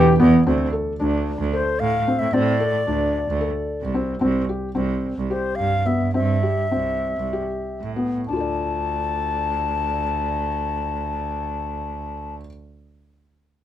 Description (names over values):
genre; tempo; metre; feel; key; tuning
contemporary instrumental, contemporary; 181-224 BPM (eighths); 7/8; straight; D dorian; A4 = 439 Hz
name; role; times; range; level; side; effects
bright baroque flute; melody; 0.0-12.4 s; D4 to A5; -25 LUFS; left 4 dB; none
felt-muted upright piano; arpeggios; 0.0-12.5 s; B3 to D5; -23 LUFS; left 2 dB; none
bright cello; bass; 0.0-12.4 s; C2 to A2; -24 LUFS; right 4 dB; none
room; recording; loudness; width
light reverb; close, detailed microphones; -20 LUFS; side -11 dB against mid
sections
0.5-8.3 A section; 8.3-12.9 B section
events
slowing down 4.2-8.3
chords
0.5 D5; 4.2 C; 8.3 Dm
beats
0.19 | 0.46 0.72 0.99 1.26 1.53 1.80 2.06 | 2.33 2.60 2.87 3.14 3.40 3.67 3.94 | 4.21 4.48 4.75 5.02 5.30 5.57 5.85 | 6.14 6.43 6.72 7.02 7.33 7.64 7.96 | 8.28 8.61 8.94 9.27 9.60 9.94 10.27 | 10.60 10.93 11.26 11.59 11.93 12.26